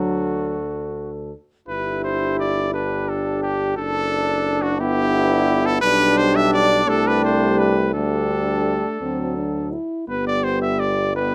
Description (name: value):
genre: classical, brass quintet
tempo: 56 BPM (dotted quarters)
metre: 6/8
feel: rubato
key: G major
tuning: A4 = 440 Hz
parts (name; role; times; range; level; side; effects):
- warm trumpet; melody; 0.0-11.3 s; F#4 to E5; -24 LUFS; equal; none
- mellow flugelhorn; second line; 0.0-11.3 s; B3 to A4; -28 LUFS; equal; none
- mellow French horn; accompaniment; 0.0-11.3 s; A3 to G4; -28 LUFS; equal; none
- warm euphonium; accompaniment; 0.0-11.3 s; F#3 to D4; -28 LUFS; equal; none
- clear bass trombone; bass; 0.0-11.3 s; F#1 to D2; -28 LUFS; equal; none
room: light reverb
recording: close, detailed microphones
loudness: -20 LUFS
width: mono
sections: 0.0-1.7 A section; 1.7-11.3 B section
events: none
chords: 0.0 D; 1.7 G5; 3.8 D/F#; 4.8 G; 5.8 G/B; 6.9 Am7/C; 7.9 Dsus4; 9.0 D; 10.1 G